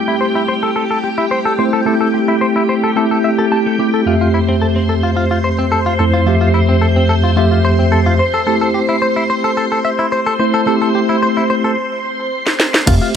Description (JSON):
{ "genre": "nu-disco, nu disco", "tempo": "109 BPM", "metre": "4/4", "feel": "straight", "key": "unclear", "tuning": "A4 = 440 Hz", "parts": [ { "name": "mellow tine electric piano", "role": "accompaniment", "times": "0.0-13.2 s", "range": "F2 to E5", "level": "-15 LUFS", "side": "equal", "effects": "medium stereo tremolo, digital delay" }, { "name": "string machine, full ensemble", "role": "sustained chords", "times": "0.0-13.2 s", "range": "G4 to C6", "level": "-20 LUFS", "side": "equal", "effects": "ensemble chorus, sidechain pumping" }, { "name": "direct-recorded clean electric guitar", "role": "riff", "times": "0.1-13.1 s", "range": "A3 to A5", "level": "-18 LUFS", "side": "left 2 dB", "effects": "wide subtle chorus, low-pass filter, digital delay" }, { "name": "house drum kit", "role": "drums", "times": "12.5-13.0 s", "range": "crash cymbal, hi-hat, snare drum", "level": "-14 LUFS", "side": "equal", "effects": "none" }, { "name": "fat analog bass", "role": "bass", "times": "12.9-13.0 s", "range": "F1", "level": "-13 LUFS", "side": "equal", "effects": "none" }, { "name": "electronic kick drum", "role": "drums", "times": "12.9-13.0 s", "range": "none", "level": "-15 LUFS", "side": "equal", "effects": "none" } ], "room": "moderate plate reverb, RT60 1.9 s", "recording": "none", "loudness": "-12 LUFS", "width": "side -8 dB against mid", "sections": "0.0-12.9 A section", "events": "break 11.8-12.9; drum fill 12.5-12.9", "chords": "0.0 Am7; 4.1 Fmaj7; 8.2 Am7" }